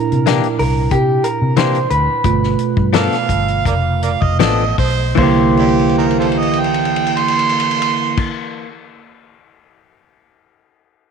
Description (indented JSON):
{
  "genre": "straight-eighth soul blues",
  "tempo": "75-94 BPM",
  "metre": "4/4",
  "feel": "straight",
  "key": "C mixolydian",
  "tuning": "A4 = 439 Hz",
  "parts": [
    { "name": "electric guitar through a small old amp", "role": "melody", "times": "0.0-8.3 s", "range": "G4 to C5", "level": "-20 LUFS", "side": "right 2 dB", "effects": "slapback echo" },
    { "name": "bell-like tine electric piano", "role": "accompaniment", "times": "0.0-8.3 s", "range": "Bb2 to F4", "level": "-20 LUFS", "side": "right 8 dB", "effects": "auto-pan" },
    { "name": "vintage muted fingered electric bass", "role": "bass", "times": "0.1-8.3 s", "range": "F1 to C3", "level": "-18 LUFS", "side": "left 1 dB", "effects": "none" },
    { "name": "warm soul drum kit", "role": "drums", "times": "0.1-9.8 s", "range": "crash cymbal, hi-hat, kick drum, ride cymbal, snare drum", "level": "-22 LUFS", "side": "left 5 dB", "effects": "none" },
    { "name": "direct-recorded clean electric guitar", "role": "stabs", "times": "0.3-8.7 s", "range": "E3 to A4", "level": "-20 LUFS", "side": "left 11 dB", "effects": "none" },
    { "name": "warm harmonica", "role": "second line", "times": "3.0-8.3 s", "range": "D4 to C6", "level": "-18 LUFS", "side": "right 9 dB", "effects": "overdrive" }
  ],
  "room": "moderate echo chamber reverb, RT60 2.2 s",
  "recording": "1960s-style stereo with parts hard left and right",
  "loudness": "-13 LUFS",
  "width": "side -6 dB against mid",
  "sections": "0.0-5.2 A section; 5.2-8.4 B section",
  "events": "slowing down 0.0-5.2; drum fill 5.6-8.2",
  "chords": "0.0 C9; 2.2 G9; 5.2 C9"
}